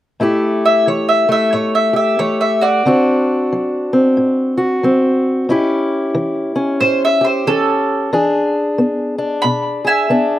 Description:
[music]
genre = acoustic country blues, solo or duo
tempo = 91 BPM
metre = 4/4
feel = swing 61% on 8ths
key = A mixolydian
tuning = A4 = 440 Hz
[part]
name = fingerpicked acoustic archtop guitar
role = accompaniment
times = 0.2-10.4 s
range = A2 to G#4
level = -15 LUFS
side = left 1 dB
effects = none
[part]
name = mandolin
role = melody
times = 0.7-10.4 s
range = F#4 to B5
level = -14 LUFS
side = right 1 dB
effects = slapback echo
[sound]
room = light reverb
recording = recorded outdoors, with no room sound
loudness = -13 LUFS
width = side -13 dB against mid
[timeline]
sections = 0.2-10.4 A section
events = none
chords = 0.2 A5; 2.9 D7; 5.5 A7; 8.1 E7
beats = | 0.21 0.87 1.53 2.19 | 2.85 3.51 4.17 4.83 | 5.49 6.14 6.80 7.46 | 8.12 8.78 9.43 10.09

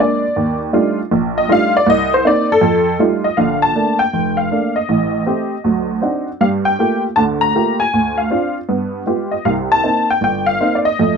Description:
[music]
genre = solo jazz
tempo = 158 BPM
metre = 4/4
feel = swing 65% on 8ths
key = unclear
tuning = A4 = 440 Hz
[part]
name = honky-tonk upright piano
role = solo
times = 0.0-11.2 s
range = F1 to Bb5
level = -14 LUFS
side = equal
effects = none
[sound]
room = light reverb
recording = dark, warm production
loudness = -14 LUFS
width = side -6 dB against mid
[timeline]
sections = 0.0-3.4 A section; 3.4-11.2 B section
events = honky-tonk piano solo 0.0-3.4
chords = 0.4 Ebmaj9#11; 1.9 Cm7; 2.6 F9; 3.4 Bbmaj7; 4.9 Am7b5; 5.6 D7b9; 6.4 Gm9; 7.9 Dm7b5; 8.7 G7b9; 9.5 Cm7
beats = | 0.36 0.73 1.11 1.49 | 1.86 2.24 2.62 2.99 | 3.37 3.75 4.13 4.51 | 4.89 5.27 5.65 6.03 | 6.41 6.79 7.17 7.55 | 7.93 8.31 8.69 9.07 | 9.46 9.84 10.22 10.60 | 10.98

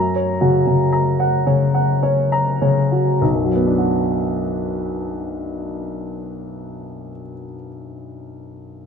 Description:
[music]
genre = neoclassical minimalist piano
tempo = 48-61 BPM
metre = 3/4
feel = rubato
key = B minor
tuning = A4 = 441 Hz
[part]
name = warm upright piano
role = solo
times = 0.0-8.9 s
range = B1 to A#5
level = -18 LUFS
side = left 1 dB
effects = none
[sound]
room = moderate studio reverb, RT60 0.6 s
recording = minimal, uncompressed stereo recording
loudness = -16 LUFS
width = side -6 dB against mid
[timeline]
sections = 0.0-3.2 A section; 3.2-6.9 B section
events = slowing down 0.0-3.2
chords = 0.0 F#; 3.2 Bm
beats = 0.91 2.02 | 3.22 4.45 5.67

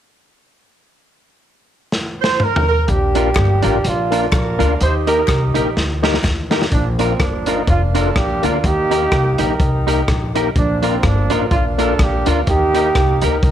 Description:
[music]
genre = ska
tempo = 125 BPM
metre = 4/4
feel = swing 57% on 8ths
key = Bb major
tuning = A4 = 438 Hz
[part]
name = crunchy breakbeat drum kit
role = drums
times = 1.9-13.5 s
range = hi-hat, kick drum, rim click, snare drum, toms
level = -20 LUFS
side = equal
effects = none
[part]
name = dark horn section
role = melody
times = 2.2-13.5 s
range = F3 to C5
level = -19 LUFS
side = right 3 dB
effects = none
[part]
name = upright bass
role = bass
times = 2.9-13.5 s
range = F1 to Eb2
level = -19 LUFS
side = equal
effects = none
[part]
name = tonewheel organ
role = stabs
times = 3.1-13.4 s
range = Bb3 to Bb4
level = -23 LUFS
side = left 12 dB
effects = fast rotary speaker
[part]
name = semi-hollow electric guitar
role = accompaniment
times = 3.2-13.4 s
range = D4 to Bb4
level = -24 LUFS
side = right 12 dB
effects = warbly pitch drift, slapback echo
[part]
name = group handclap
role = percussion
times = 3.4-6.4 s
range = none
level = -34 LUFS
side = left 6 dB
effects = slapback echo
[sound]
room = light reverb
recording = 1960s-style stereo with parts hard left and right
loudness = -14 LUFS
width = side -10 dB against mid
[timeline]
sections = 1.0-2.9 A section; 2.9-6.7 B section; 6.7-13.5 C section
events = drum fill 1.9-2.9, 5.8-6.7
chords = 1.0 N.C.; 2.9 Bb; 4.8 Eb; 6.7 Bb; 8.6 Eb; 10.6 Bb; 12.5 Eb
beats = | 0.96 1.44 1.92 2.40 | 2.88 3.36 3.84 4.32 | 4.80 5.28 5.76 6.24 | 6.72 7.20 7.68 8.16 | 8.64 9.12 9.60 10.08 | 10.56 11.04 11.52 12.00 | 12.48 12.96 13.43

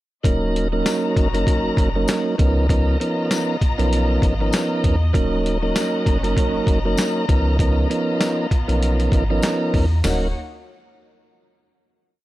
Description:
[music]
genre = hip hop, boom-bap hip-hop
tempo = 98 BPM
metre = 4/4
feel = swing 57% on 16ths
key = Eb minor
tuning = A4 = 435 Hz
[part]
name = mellow tonewheel organ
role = accompaniment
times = 0.2-10.3 s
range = F3 to Bb4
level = -21 LUFS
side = right 1 dB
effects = slow rotary speaker, cassette tape, high-pass filter, low-pass filter
[part]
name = warm sub bass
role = bass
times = 0.2-10.3 s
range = Eb1 to Fb2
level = -21 LUFS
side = equal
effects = transformer saturation
[part]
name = boom bap sampler-style drum kit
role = drums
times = 0.2-10.2 s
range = hi-hat, kick drum, snare drum, toms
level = -20 LUFS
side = equal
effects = none
[part]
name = warm studio string section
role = sustained chords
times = 0.3-10.3 s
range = Bb3 to Bb5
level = -30 LUFS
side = left 3 dB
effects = high-pass filter, low-pass filter
[part]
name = tambourine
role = percussion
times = 0.9-10.3 s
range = none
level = -33 LUFS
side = left 4 dB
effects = none
[sound]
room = little or no reverb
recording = dry, gritty hardware recording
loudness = -17 LUFS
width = side -16 dB against mid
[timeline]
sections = 0.2-10.0 hook; 10.0-12.2 final chord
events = none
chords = 0.2 Ebm7; 2.4 Db13; 5.1 Ebm7; 7.3 Db13; 10.0 Ebm7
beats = | 0.24 0.86 1.47 2.08 | 2.69 3.31 3.92 4.53 | 5.14 5.75 6.37 6.98 | 7.59 8.20 8.81 9.43 | 10.04

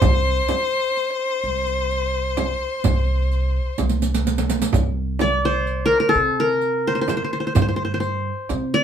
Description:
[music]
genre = Turkish makam ensemble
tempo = 127 BPM (eighths)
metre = 10/8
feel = straight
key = unclear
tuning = A4 = 440 Hz
[part]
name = qanun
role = melody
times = 0.0-8.8 s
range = A4-30c to D5-30c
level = -19 LUFS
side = left 1 dB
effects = none
[part]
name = clear violin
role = second line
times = 0.0-3.8 s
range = C5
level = -22 LUFS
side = left 3 dB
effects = none
[part]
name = upright bass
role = bass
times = 0.0-8.8 s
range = C2 to C3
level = -23 LUFS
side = right 1 dB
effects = none
[part]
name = frame drum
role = percussion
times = 0.0-8.7 s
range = none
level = -22 LUFS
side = right 3 dB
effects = none
[part]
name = riq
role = percussion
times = 0.0-8.8 s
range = none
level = -25 LUFS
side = right 5 dB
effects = none
[sound]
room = wet small room reverb, RT60 0.5 s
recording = band playing live in one room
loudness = -19 LUFS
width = side -8 dB against mid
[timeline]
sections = 0.0-4.7 A section; 4.7-8.8 B section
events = drum fill 3.8-4.7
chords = none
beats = | 0.02 0.49 0.96 1.43 1.90 2.37 2.84 3.31 3.78 4.25 | 4.72 5.20 5.67 6.14 6.61 7.08 7.55 8.02 8.49

